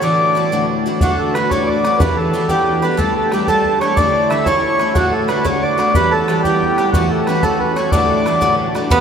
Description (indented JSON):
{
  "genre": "celtic folk, Celtic jig",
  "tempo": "122 BPM (dotted quarters)",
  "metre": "6/8",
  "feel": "straight",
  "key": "D major",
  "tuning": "A4 = 438 Hz",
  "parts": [
    { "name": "mellow accordion", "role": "melody", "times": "0.0-9.0 s", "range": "F#4 to E5", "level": "-16 LUFS", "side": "right 1 dB", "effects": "none" },
    { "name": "picked twelve-string acoustic guitar", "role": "accompaniment", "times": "0.0-9.0 s", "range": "D2 to G4", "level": "-18 LUFS", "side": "left 1 dB", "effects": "none" },
    { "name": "bodhran", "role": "percussion", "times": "1.0-9.0 s", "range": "none", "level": "-22 LUFS", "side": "equal", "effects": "none" },
    { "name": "Irish bouzouki", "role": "second line", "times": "8.9-9.0 s", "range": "B3", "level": "-17 LUFS", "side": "right 3 dB", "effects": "none" }
  ],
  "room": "wet huge ambient reverb, RT60 8.2 s",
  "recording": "in a vast, echoing space",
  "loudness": "-13 LUFS",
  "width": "side -7 dB against mid",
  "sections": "0.0-1.0 A section; 1.0-8.9 A section",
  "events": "none",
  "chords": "0.0 Dadd9; 1.0 D; 2.0 Em7; 3.0 Gsus2; 4.0 Asus4; 4.5 A; 5.0 D; 6.0 Em; 6.9 A6; 7.9 Dadd9"
}